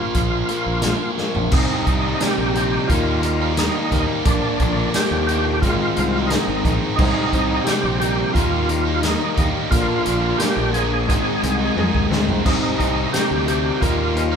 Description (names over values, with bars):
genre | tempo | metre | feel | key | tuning
classic rock | 88 BPM | 4/4 | straight | C minor | A4 = 440 Hz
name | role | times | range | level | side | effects
overdriven tonewheel organ | melody | 0.0-14.4 s | D4 to Ab4 | -23 LUFS | right 2 dB | slow rotary speaker, chorus vibrato
crunchy overdriven guitar | riff | 0.0-14.4 s | Ab2 to Eb4 | -26 LUFS | left 8 dB | spring reverb
distorted electric guitar | riff | 0.0-14.4 s | Ab2 to Eb4 | -27 LUFS | right 6 dB | overdrive
fuzz fingered electric bass | bass | 0.1-14.4 s | Ab1 to F2 | -24 LUFS | equal | overdrive
vintage drum kit | drums | 0.1-14.3 s | crash cymbal, hi-hat, kick drum, snare drum, splash cymbal, tambourine, toms | -22 LUFS | equal | none
bright upright piano | accompaniment | 1.5-14.4 s | Bb3 to D5 | -30 LUFS | left 2 dB | none
crunchy overdriven guitar | riff | 1.5-14.4 s | Ab2 to Eb4 | -27 LUFS | equal | none
room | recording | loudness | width
moderate large studio reverb, RT60 1.0 s | band playing live in one room | -17 LUFS | side -7 dB against mid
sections
0.0-1.5 A section; 1.5-14.4 B section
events
drum fill 1.2-1.5, 11.8-12.5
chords
0.0 Bb5; 1.5 Cm; 2.9 Eb; 4.3 Bb; 5.6 Ab; 7.0 Cm; 8.4 Eb; 9.7 Bb; 11.1 Ab; 12.5 Cm; 13.8 Eb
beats
0.15 0.84 | 1.52 2.21 2.89 3.57 | 4.26 4.94 5.62 6.31 | 6.99 7.67 8.36 9.04 | 9.72 10.40 11.09 11.77 | 12.45 13.13 13.81